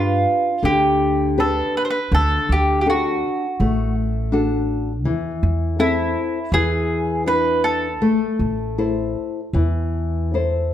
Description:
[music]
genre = fado-style ballad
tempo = 81 BPM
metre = 4/4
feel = rubato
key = A minor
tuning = A4 = 440 Hz
[part]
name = mandolin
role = melody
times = 0.0-10.3 s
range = E4 to C5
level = -20 LUFS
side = right 1 dB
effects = none
[part]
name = nylon-string guitar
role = accompaniment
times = 0.0-10.7 s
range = D3 to C5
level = -22 LUFS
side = left 3 dB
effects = none
[part]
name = upright bass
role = bass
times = 0.0-10.7 s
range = A1 to G2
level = -22 LUFS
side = right 1 dB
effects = none
[sound]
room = moderate recital hall reverb, RT60 1.3 s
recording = none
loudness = -18 LUFS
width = side -11 dB against mid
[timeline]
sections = 0.0-10.7 A section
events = none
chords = 0.0 G; 2.1 D; 5.1 Am/E; 6.5 E7; 8.0 Am

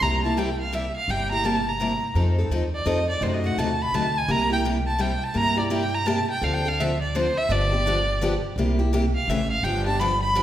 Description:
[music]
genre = acoustic string swing (jazz manouche)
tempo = 168 BPM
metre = 3/4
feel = swing 63% on 8ths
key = C mixolydian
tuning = A4 = 440 Hz
[part]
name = rich violin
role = melody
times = 0.0-10.4 s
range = C5 to B5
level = -25 LUFS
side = equal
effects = none
[part]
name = picked steel-string acoustic guitar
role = accompaniment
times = 0.0-10.4 s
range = C3 to A4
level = -26 LUFS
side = left 1 dB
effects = none
[part]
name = upright bass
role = bass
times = 0.0-10.4 s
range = G1 to G2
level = -26 LUFS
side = equal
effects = none
[sound]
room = wet recital hall reverb, RT60 1.4 s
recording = recorded in a church or concert hall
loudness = -21 LUFS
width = side -12 dB against mid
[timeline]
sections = 0.0-10.4 A section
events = violin solo 0.0-10.4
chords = 0.0 C7; 2.2 F7; 3.2 F#dim7; 4.3 C7; 6.4 Dm7; 7.5 G7; 8.6 C7; 9.3 A7; 9.6 G7

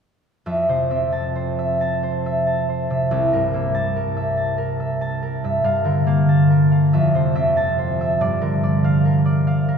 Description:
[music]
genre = classical, solo harp piece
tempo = 47 BPM (dotted quarters)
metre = 6/8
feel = rubato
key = F major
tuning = A4 = 442 Hz
[part]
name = concert harp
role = solo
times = 0.5-9.8 s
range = C2 to A5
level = -17 LUFS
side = equal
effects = none
[sound]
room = wet cathedral reverb, RT60 5.0 s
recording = recorded in a church or concert hall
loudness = -17 LUFS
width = side -6 dB against mid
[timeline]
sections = 0.5-9.8 A section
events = none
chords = 0.5 Fmaj7; 3.1 C6; 5.6 Gm9; 6.9 Fmaj7; 8.2 Gm7

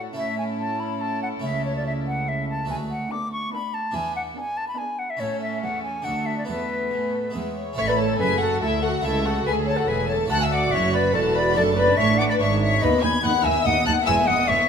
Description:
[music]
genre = classical, baroque-style concerto movement with solo episodes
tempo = 143 BPM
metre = 3/4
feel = straight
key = A major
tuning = A4 = 441 Hz
[part]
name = warm studio violin section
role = melody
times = 0.0-14.7 s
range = G#4 to G#6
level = -30 LUFS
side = left 3 dB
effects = none
[part]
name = warm chamber violin section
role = second line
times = 0.0-14.7 s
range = B3 to G#5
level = -27 LUFS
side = left 3 dB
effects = none
[part]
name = dark chamber viola section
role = accompaniment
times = 0.0-14.7 s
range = G#3 to A4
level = -30 LUFS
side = equal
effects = none
[part]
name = harpsichord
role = accompaniment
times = 0.0-14.7 s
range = C#2 to B4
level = -32 LUFS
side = right 1 dB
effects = none
[part]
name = dark chamber cello section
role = bass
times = 0.0-14.6 s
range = C#2 to A2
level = -29 LUFS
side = right 5 dB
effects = none
[part]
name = silver concert flute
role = melody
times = 0.2-14.7 s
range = A4 to D6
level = -25 LUFS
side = left 2 dB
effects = none
[part]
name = rich chamber double bass section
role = bass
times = 7.8-14.6 s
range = E1 to D#2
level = -28 LUFS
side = right 3 dB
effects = none
[sound]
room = wet recital hall reverb, RT60 1.4 s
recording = none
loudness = -20 LUFS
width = side -7 dB against mid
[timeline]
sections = 0.0-7.8 A section; 7.8-14.7 B section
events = none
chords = 0.2 A; 1.4 A/C#; 2.7 Bm7/D; 4.0 E7; 5.2 A; 6.1 D; 6.5 Esus4; 7.3 E; 7.8 A; 9.0 A/C#; 10.3 D; 11.6 D/F#; 12.8 B/D#; 14.1 E

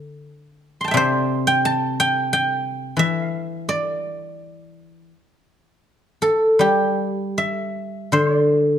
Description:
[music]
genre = chinese traditional, Chinese solo plucked strings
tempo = 78-90 BPM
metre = 4/4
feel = rubato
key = D shang mode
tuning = A4 = 442 Hz
[part]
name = guzheng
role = solo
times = 0.0-8.8 s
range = C3 to C6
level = -18 LUFS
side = equal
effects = none
[sound]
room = moderate recital hall reverb, RT60 1.4 s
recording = dark, warm production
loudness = -18 LUFS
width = side -9 dB against mid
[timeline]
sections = 0.0-6.6 A section; 6.6-8.8 B section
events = none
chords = none

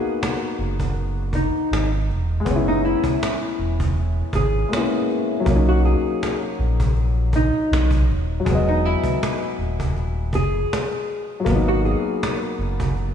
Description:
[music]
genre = lo-fi hip hop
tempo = 80 BPM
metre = 4/4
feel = swing 55% on 16ths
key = B major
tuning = A4 = 439 Hz
[part]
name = nylon-string guitar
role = melody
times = 0.0-12.4 s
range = D#4 to G#4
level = -26 LUFS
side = equal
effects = wide subtle chorus, low-pass filter, tape echo
[part]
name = dark upright piano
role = accompaniment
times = 0.0-13.1 s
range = F#3 to D#5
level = -24 LUFS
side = left 3 dB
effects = cassette tape, low-pass filter
[part]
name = cajon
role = drums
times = 0.1-13.1 s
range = none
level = -27 LUFS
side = right 2 dB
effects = vintage 12-bit sampler grit
[part]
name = sub bass with octave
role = bass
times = 0.6-13.1 s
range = D#1 to B1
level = -21 LUFS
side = equal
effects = none
[sound]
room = light reverb, small room ambience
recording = studio ambience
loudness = -19 LUFS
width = side -8 dB against mid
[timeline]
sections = 0.0-13.1 A section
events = none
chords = 0.0 G#m7; 2.5 F#9sus4; 5.5 Bmaj9; 8.5 Emaj7; 11.5 G#m7

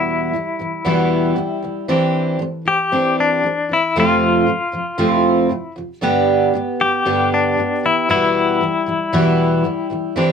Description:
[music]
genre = pop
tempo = 116 BPM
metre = 4/4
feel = straight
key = unclear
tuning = A4 = 439 Hz
[part]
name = direct-recorded clean electric guitar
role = melody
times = 0.0-9.9 s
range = D4 to G4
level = -18 LUFS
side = left 4 dB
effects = tremolo
[part]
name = fingerpicked twelve-string acoustic guitar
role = accompaniment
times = 0.0-10.3 s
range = E2 to G4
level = -17 LUFS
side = right 1 dB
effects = none
[sound]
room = light reverb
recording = close, detailed microphones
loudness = -15 LUFS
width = side -6 dB against mid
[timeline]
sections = 0.0-10.3 A section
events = none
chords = 0.0 Em; 1.9 Cadd9/E; 4.0 F; 6.0 G; 7.8 Em

